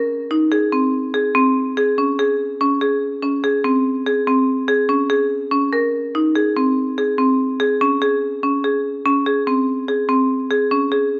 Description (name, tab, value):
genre	contemporary instrumental, contemporary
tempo	144 BPM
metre	7/4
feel	straight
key	unclear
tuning	A4 = 442 Hz
part	marimba with hard mallets	solo	0.0-11.2 s	C4 to Bb4	-18 LUFS	equal	none
room	light reverb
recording	none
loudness	-18 LUFS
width	mono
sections	0.0-11.2 A section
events	none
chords	none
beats	| 0.11 0.53 0.94 1.36 1.77 2.19 2.61 | 3.02 3.44 3.85 4.27 4.69 5.10 5.52 | 5.94 6.35 6.77 7.18 7.60 8.02 8.43 | 8.85 9.26 9.68 10.09 10.51 10.92